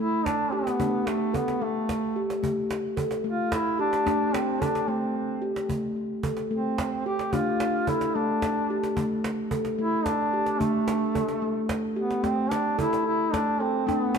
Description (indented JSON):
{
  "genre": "world meditative, meditative tuned percussion",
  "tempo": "73 BPM (dotted quarters)",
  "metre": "6/8",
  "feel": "straight",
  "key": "A minor",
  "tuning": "A4 = 441 Hz",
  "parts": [
    { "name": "mellow duduk", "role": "melody", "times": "0.0-14.2 s", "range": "A3 to G4", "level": "-28 LUFS", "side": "right 1 dB", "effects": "tape echo" },
    { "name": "steel tongue drum", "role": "arpeggios", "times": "0.0-14.2 s", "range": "A3 to A4", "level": "-27 LUFS", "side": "left 1 dB", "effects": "tape echo" },
    { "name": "cajon", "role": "percussion", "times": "0.3-14.2 s", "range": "none", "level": "-35 LUFS", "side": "right 2 dB", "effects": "none" }
  ],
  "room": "wet church reverb, RT60 2.5 s",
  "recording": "none",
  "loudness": "-24 LUFS",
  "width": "side -6 dB against mid",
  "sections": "0.0-12.2 A section; 12.2-14.2 B section",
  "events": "none",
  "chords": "0.0 A9sus4; 0.8 D5; 2.4 A7(no3); 4.1 D5; 5.7 Am; 7.3 Dm; 9.0 A7sus4; 10.6 D5; 12.2 Amadd11",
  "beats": "| 0.80 1.62 | 2.43 3.25 | 4.06 4.88 | 5.69 6.51 | 7.33 8.15 | 8.97 9.78 | 10.60 11.42 | 12.24 13.06 | 13.88"
}